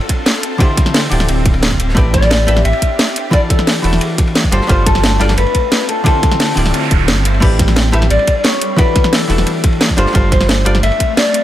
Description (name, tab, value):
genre	liquid drum and bass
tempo	176 BPM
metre	4/4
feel	straight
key	A minor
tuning	A4 = 440 Hz
part	shimmering ambient pad	sustained chords	0.0-11.4 s	G3 to A4	-23 LUFS	left 1 dB	chorus, built-in reverb, sidechain pumping
part	crunchy breakbeat drum kit	drums	0.0-11.4 s	hi-hat, ride cymbal, snare drum	-25 LUFS	equal	high-pass filter on cymbals, high-pass filter on hats, high-pass filter on snare, high-pass filter on room
part	electronic kick drum	drums	0.1-11.1 s	none	-14 LUFS	equal	none
part	garage drum kit	drums	0.1-11.4 s	crash cymbal, hi-hat, snare drum	-16 LUFS	equal	none
part	hollow-body jazz guitar	accompaniment	0.6-10.8 s	D3 to E5	-18 LUFS	equal	none
part	sub bass with octave	bass	1.1-10.9 s	D1 to A1	-15 LUFS	equal	none
part	mellow electric guitar	melody	2.1-11.4 s	G4 to E5	-18 LUFS	left 2 dB	digital delay
part	noise sweep	sound effects	6.5-7.4 s	none	-24 LUFS	right 7 dB	none
room	small room ambience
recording	none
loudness	-10 LUFS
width	side -13 dB against mid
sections	0.0-11.4 A section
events	noise sweep 6.5-7.4; kick drops out 7.1-7.4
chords	0.0 G9sus4 (rootless); 0.6 D9sus4; 2.0 A9sus4; 3.2 E9sus4; 4.5 G9sus4; 6.1 D9sus4; 7.4 A9sus4; 8.6 E9sus4; 10.0 G9sus4